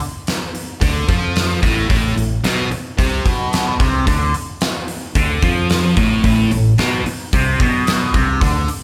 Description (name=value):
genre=hard rock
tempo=111 BPM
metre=4/4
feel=straight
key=A minor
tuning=A4 = 441 Hz
part: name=huge arena drum kit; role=drums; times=0.0-8.8 s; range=hi-hat, kick drum, snare drum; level=-21 LUFS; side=equal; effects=none
part: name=overdriven electric guitar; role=riff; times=0.8-8.7 s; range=A2 to F3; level=-20 LUFS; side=equal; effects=phaser
part: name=modern bright fingered electric bass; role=bass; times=0.8-8.7 s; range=A1 to F2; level=-24 LUFS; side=equal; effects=none
room=light reverb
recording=band playing live in one room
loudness=-17 LUFS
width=mono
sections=0.0-8.8 A section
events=none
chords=0.0 Am